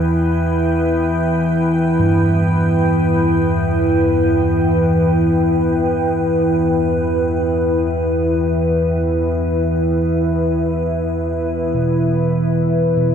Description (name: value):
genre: dark ambient drone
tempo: free time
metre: none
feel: none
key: E minor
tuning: A4 = 440 Hz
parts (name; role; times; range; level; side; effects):
- deep dark ambient pad; sustained chords; 0.0-13.1 s; E4 to G5; -18 LUFS; equal; chorus, built-in reverb
- analog drone; drone; 0.0-13.1 s; E2 to E3; -18 LUFS; equal; chorus
- icy glass pad; texture; 0.0-13.1 s; G3 to B4; -33 LUFS; right 1 dB; chorus, built-in reverb
- gamelan-type bossed gongs; arpeggios; 2.0-13.1 s; G2 to B2; -23 LUFS; right 1 dB; none
room: wet huge ambient reverb, RT60 7.3 s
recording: in a vast, echoing space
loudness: -14 LUFS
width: side -8 dB against mid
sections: 0.0-12.7 A section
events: fade-out on ambient pad 0.0-12.7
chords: 0.0 Em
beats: free time